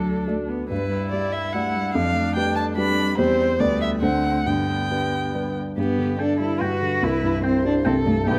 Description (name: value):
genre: quick classical-period movement for piano quartet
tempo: 143 BPM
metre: 3/4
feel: straight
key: G major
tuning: A4 = 440 Hz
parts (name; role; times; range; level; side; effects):
- warm violin; melody; 0.0-8.4 s; G4 to B5; -28 LUFS; equal; none
- warm cello; second line; 0.0-8.4 s; D3 to F#4; -28 LUFS; equal; none
- dark baby grand piano; accompaniment; 0.0-8.4 s; B1 to D5; -27 LUFS; equal; none
- warm viola; accompaniment; 0.0-8.4 s; B3 to G5; -33 LUFS; equal; none
room: moderate recital hall reverb, RT60 1.6 s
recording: close, detailed microphones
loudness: -22 LUFS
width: mono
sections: 0.0-5.8 A section; 5.8-8.4 A section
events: none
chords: 0.0 D; 0.7 G; 2.0 G7/F; 3.2 C/E; 3.6 G/D; 4.0 D7; 4.5 G; 7.0 C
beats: 0.28 | 0.71 1.13 1.54 | 1.95 2.36 2.77 | 3.19 3.60 4.03 | 4.46 4.90 5.34 | 5.77 6.19 6.61 | 7.03 7.44 7.86 | 8.27